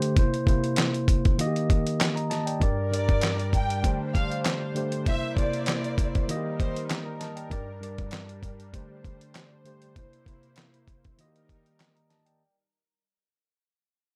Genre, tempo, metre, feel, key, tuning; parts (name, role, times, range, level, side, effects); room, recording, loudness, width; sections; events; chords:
hip hop, boom-bap hip-hop; 98 BPM; 4/4; swing 55% on 16ths; A4 = 440 Hz
mellow tine electric piano; accompaniment; 0.0-12.6 s; G2 to Bb5; -31 LUFS; equal; cassette tape
dusty soul sampler-style drum kit; drums; 0.0-12.4 s; handclaps, hi-hat, kick drum, snare drum; -28 LUFS; equal
lush unison pad; sustained chords; 2.6-12.4 s; G3 to C5; -42 LUFS; equal; chorus
warm studio violin section; melody; 2.9-6.7 s; C5 to G5; -36 LUFS; equal; digital delay
light reverb; -26 LUFS; mono
0.0-12.4 A section
fade-out 0.0-12.4
0.2 C7; 1.4 Eb; 2.6 Gm; 3.8 D7sus4; 5.1 C7; 6.3 Eb; 7.5 Gm; 8.7 D7sus4; 10.0 C7; 11.2 Eb